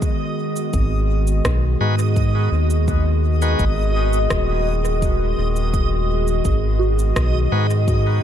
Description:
ambient dub; 84 BPM; 4/4; straight; G# minor; A4 = 440 Hz
warbly tape-like pad; sustained chords; 0.0-8.2 s; D#3 to G#4; -24 LUFS; equal; chorus, built-in reverb
electronic kick drum; drums; 0.0-8.0 s; -22 LUFS; equal
electronic shaker and rim click; drums; 0.0-8.0 s; -30 LUFS; equal; dub echo
backwards swelling texture; texture; 0.0-8.2 s; D#5; -28 LUFS; right 1 dB; built-in reverb
round analog bass; bass; 0.7-8.2 s; D#1 to G#2; -19 LUFS; equal
bright tonewheel organ; stabs; 1.8-7.7 s; G#3 to B4; -30 LUFS; left 2 dB; overdrive, stopped rotary speaker, dub echo
soft synth bell; arpeggios; 6.8-8.2 s; F#4; -27 LUFS; right 5 dB; chorus, phaser, dub echo
little or no reverb; -16 LUFS; side -10 dB against mid
0.0-8.2 A section
0.0 G#m7

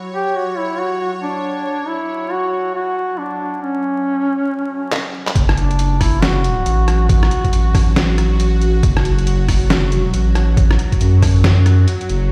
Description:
deep dubstep; 138 BPM; 4/4; swing 61% on 16ths, half-time; F# minor; A4 = 440 Hz
bowed-like drone; sustained chords; 0.0-12.3 s; F#3 to C#5; -28 LUFS; equal; built-in reverb, phaser
warm duduk; melody; 0.1-7.9 s; C#4 to G4; -23 LUFS; equal; dub echo
trip hop sampler-style drum kit; drums; 4.9-12.2 s; handclaps, hi-hat, rim click, snare drum; -24 LUFS; equal
soft dub sub bass; bass; 5.4-12.3 s; F#1 to F#2; -17 LUFS; equal
electronic kick drum; drums; 5.4-11.3 s; -18 LUFS; equal
light reverb, digital ambience; played on a big sound system in a bare room, large studio reverb, vinyl crackle; -16 LUFS; mono
0.0-5.4 A section; 5.4-12.3 B section
drum fill 4.9-5.4; drop 5.4-12.3
0.0 F#5; 5.4 F#m

